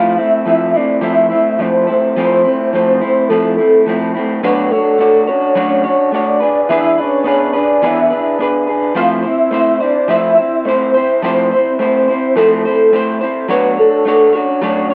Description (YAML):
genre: indie pop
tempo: 106 BPM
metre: 4/4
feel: swing 60% on 16ths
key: unclear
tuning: A4 = 440 Hz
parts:
  - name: soft octave-layered synth lead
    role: melody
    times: 0.0-14.9 s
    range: A4 to F5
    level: -15 LUFS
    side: equal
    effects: tremolo, ensemble chorus, plate reverb
  - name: electric guitar through a small old amp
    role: accompaniment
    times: 0.0-14.9 s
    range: E3 to C#5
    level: -18 LUFS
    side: equal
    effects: subtle chorus, warbly pitch drift, plate reverb
room: wet studio reverb, RT60 0.7 s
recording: worn, warbling old tape, cassette tape, warbly pitch drift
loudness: -13 LUFS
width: mono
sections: 0.0-14.9 A section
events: none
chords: 0.0 Fmaj7; 4.4 Dmaj7/F#; 6.4 E7; 9.0 Fmaj7; 13.5 Dmaj7/F#